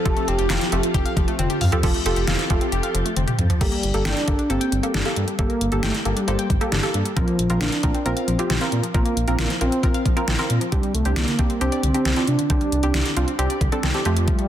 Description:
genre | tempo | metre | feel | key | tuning
synth-pop | 135 BPM | 4/4 | straight | G minor | A4 = 440 Hz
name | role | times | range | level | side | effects
mellow horn-like synth lead | melody | 0.0-14.5 s | F3 to A4 | -25 LUFS | equal | chorus, digital delay
ensemble organ-string | sustained chords | 0.0-3.6 s | F3 to A4 | -28 LUFS | equal | ensemble chorus
analog pluck | arpeggios | 0.0-14.5 s | D3 to G5 | -30 LUFS | left 4 dB | chorus, digital delay
funky polysynth comp | accompaniment | 0.1-14.5 s | A3 to C5 | -26 LUFS | right 2 dB | chorus
smooth synth bass | bass | 0.1-14.3 s | F1 to C3 | -24 LUFS | equal | none
pop drum kit | drums | 0.1-14.5 s | crash cymbal, handclaps, hi-hat, kick drum, snare drum, toms | -23 LUFS | equal | overdrive
room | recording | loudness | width
light reverb, digital ambience | dense, heavily limited modern master | -19 LUFS | side -11 dB against mid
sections
0.0-1.8 A section; 1.8-3.6 B section; 3.6-14.5 C section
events
drum fill 1.4-1.8, 3.2-3.6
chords
0.0 Fadd9; 3.6 Gmadd9; 7.2 Bbsus2; 10.7 Csus2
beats
| 0.06 0.50 0.94 1.39 | 1.83 2.28 2.72 3.17 | 3.61 4.05 4.50 4.94 | 5.39 5.83 6.28 6.72 | 7.17 7.61 8.05 8.50 | 8.94 9.39 9.83 10.28 | 10.72 11.17 11.61 12.05 | 12.50 12.94 13.39 13.83 | 14.28

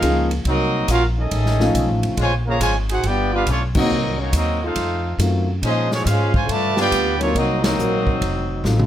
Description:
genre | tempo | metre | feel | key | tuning
jazz, big band swing | 139 BPM | 4/4 | swing 66% on 8ths | Bb minor | A4 = 441 Hz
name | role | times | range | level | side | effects
clear trumpet section | melody | 0.0-8.9 s | Ab3 to Bb5 | -23 LUFS | equal | none
mellow trombone section | second line | 0.0-8.9 s | Db3 to G4 | -24 LUFS | right 1 dB | none
warm upright piano | accompaniment | 0.0-8.9 s | Eb3 to Bb4 | -22 LUFS | left 2 dB | none
upright bass | bass | 0.0-8.9 s | F1 to Bb2 | -22 LUFS | equal | none
swinging big-band drum kit | drums | 0.0-8.9 s | crash cymbal, hi-hat, kick drum, ride cymbal, snare drum, toms | -26 LUFS | equal | none
room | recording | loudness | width
light reverb | none | -17 LUFS | side -11 dB against mid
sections
0.0-8.9 A section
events
band accent 3.7, 7.6; drum fill 8.6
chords
0.5 Cm7b5; 1.3 F7alt; 2.2 Bbm9; 3.0 G7; 3.9 Cm7b5; 4.8 F7b9; 5.6 Bbm11; 6.5 G7; 7.4 Cm7b5; 8.2 F7b9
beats
0.03 | 0.46 0.89 1.32 1.75 | 2.18 2.61 3.04 3.47 | 3.90 4.33 4.76 5.20 | 5.63 6.06 6.49 6.92 | 7.35 7.78 8.21 8.64

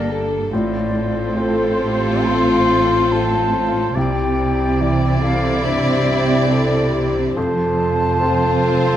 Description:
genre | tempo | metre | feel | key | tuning
cinematic, emotional film score for orchestra | 71 BPM | 4/4 | rubato | F major | A4 = 440 Hz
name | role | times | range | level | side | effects
warm studio violin section | melody | 0.0-9.0 s | A4 to D5 | -28 LUFS | left 3 dB | none
mellow clarinet | second line | 0.0-9.0 s | D4 to F4 | -28 LUFS | left 1 dB | none
mellow hollow concert flute | second line | 0.0-9.0 s | C5 to C6 | -23 LUFS | left 1 dB | none
warm oboe | second line | 0.0-9.0 s | Bb4 to D5 | -29 LUFS | right 1 dB | none
warm studio violin section | second line | 0.0-9.0 s | D4 to F4 | -30 LUFS | left 3 dB | none
felt-muted upright piano | accompaniment | 0.0-9.0 s | C2 to D5 | -26 LUFS | left 3 dB | none
warm studio viola section | accompaniment | 0.0-9.0 s | Bb3 to C4 | -26 LUFS | right 2 dB | none
warm French horn section | sustained chords | 0.0-9.0 s | Bb3 to A4 | -22 LUFS | left 3 dB | none
rich studio cello section | bass | 0.0-9.0 s | F2 to C3 | -23 LUFS | right 2 dB | none
warm studio double bass section | bass | 0.0-9.0 s | F1 to C2 | -23 LUFS | right 3 dB | none
room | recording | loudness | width
light reverb | close, detailed microphones | -15 LUFS | side -11 dB against mid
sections
0.0-9.0 A section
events
none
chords
0.0 Gmadd9; 0.5 F/A; 4.0 Cadd9; 7.4 F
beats
| 0.52 1.36 2.25 3.11 | 3.96 4.80 5.64 6.47 | 7.37 8.21

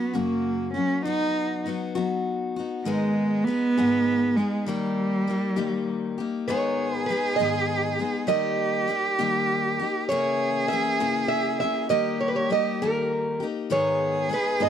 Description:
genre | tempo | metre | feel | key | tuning
acoustic folk duo or small band | 66 BPM (dotted quarters) | 6/8 | straight | G# harmonic minor from 6.5 s | A4 = 437 Hz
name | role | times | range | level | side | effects
clear cello | second line | 0.0-14.7 s | G3 to G#4 | -25 LUFS | right 2 dB | none
picked steel-string acoustic guitar | accompaniment | 0.0-14.7 s | F#2 to G#4 | -28 LUFS | left 6 dB | none
picked acoustic archtop guitar | melody | 6.5-14.7 s | A#4 to E5 | -25 LUFS | right 3 dB | none
room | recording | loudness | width
light reverb | dry, close 1970s-style studio recording | -22 LUFS | side -9 dB against mid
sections
0.0-6.5 A section; 6.5-14.7 B section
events
cello solo 0.0-6.5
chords
0.0 F#; 1.1 B/F#; 2.9 G#m; 4.7 D#; 6.5 G#m; 8.3 D#; 10.1 A#dim/C#; 11.9 D#; 13.7 G#m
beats
0.14 | 1.05 1.96 | 2.87 3.77 | 4.68 5.58 | 6.49 7.39 | 8.29 9.20 | 10.10 11.00 | 11.90 12.81 | 13.71 14.61

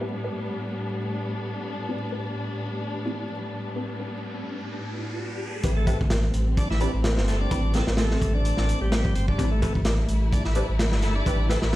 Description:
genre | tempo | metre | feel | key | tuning
breakbeat, breaks | 128 BPM | 4/4 | swing 54% on 16ths | A minor | A4 = 436 Hz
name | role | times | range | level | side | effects
warm studio string section | sustained chords | 0.0-11.8 s | A2 to E4 | -31 LUFS | left 1 dB | sidechain pumping
filtered dub chord stab | stabs | 0.0-11.6 s | C4 to B4 | -33 LUFS | left 1 dB | phaser, lush chorus, cassette tape, ping-pong delay
riser | sound effects | 2.7-5.6 s | none | -37 LUFS | equal | none
saturated sub bass | bass | 5.6-11.8 s | G1 to A1 | -24 LUFS | equal | none
crunchy breakbeat drum kit | drums | 5.6-11.8 s | hi-hat, kick drum, snare drum | -26 LUFS | equal | none
bright tonewheel organ | riff | 5.8-11.8 s | G3 to A4 | -32 LUFS | equal | slow rotary speaker, ping-pong delay
room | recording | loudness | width
studio ambience | played on a big sound system in a bare room, stone room reverb, vinyl crackle | -23 LUFS | side -16 dB against mid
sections
0.0-5.6 A section; 5.6-11.8 B section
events
riser 2.7-5.6; drop 5.6-11.8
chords
0.0 A7sus2; 5.6 Am9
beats
| 0.01 0.48 0.95 1.42 | 1.89 2.36 2.83 3.29 | 3.76 4.23 4.70 5.17 | 5.64 6.11 6.58 7.04 | 7.51 7.98 8.45 8.92 | 9.39 9.86 10.32 10.79 | 11.26 11.73

